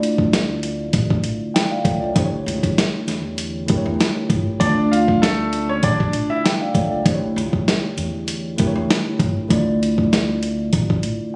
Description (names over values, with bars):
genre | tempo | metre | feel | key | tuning
hip hop, boom-bap hip-hop | 98 BPM | 4/4 | swing 55% on 16ths | D harmonic minor | A4 = 442 Hz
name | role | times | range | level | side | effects
mellow tine electric piano | accompaniment | 0.0-11.4 s | D3 to G5 | -25 LUFS | equal | cassette tape, high-pass filter, low-pass filter
upright bass | bass | 0.0-11.0 s | G1 to E2 | -26 LUFS | equal | none
dusty soul sampler-style drum kit | drums | 0.0-11.2 s | hi-hat, kick drum, snare drum | -22 LUFS | equal | none
bright upright piano | melody | 4.6-6.4 s | A3 to F5 | -24 LUFS | equal | high-pass filter, low-pass filter, tape echo
room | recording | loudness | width
digital ambience | recorded on a phone in the room, studio reverb, vinyl crackle | -20 LUFS | mono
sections
0.0-11.4 A section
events
none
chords
0.0 Dmadd9; 2.2 A7; 4.6 Dmadd9; 7.1 A7; 9.5 Dmadd9